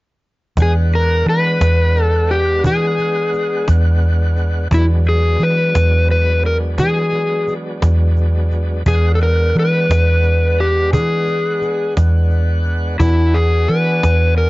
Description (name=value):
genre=slow blues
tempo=58 BPM (dotted quarters)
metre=12/8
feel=straight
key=E mixolydian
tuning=A4 = 440 Hz
part: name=overdriven slide guitar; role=melody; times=0.6-14.5 s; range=E4 to B4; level=-17 LUFS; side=left 1 dB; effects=slapback echo
part: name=tonewheel organ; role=sustained chords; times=0.6-14.5 s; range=F#3 to F#5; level=-25 LUFS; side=right 1 dB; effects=slow rotary speaker
part: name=vintage muted fingered electric bass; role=bass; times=0.6-14.5 s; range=E2 to E3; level=-15 LUFS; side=equal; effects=none
part: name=cajon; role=drums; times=0.6-14.5 s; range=none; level=-22 LUFS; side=equal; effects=none
room=little or no reverb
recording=dark, warm production, nothing above 7.6 kHz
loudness=-13 LUFS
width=side -20 dB against mid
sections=0.6-14.5 A section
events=none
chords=0.6 E7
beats=| 0.57 1.60 2.64 3.68 | 4.71 5.75 6.79 7.82 | 8.86 9.89 10.93 11.97 | 13.01 14.04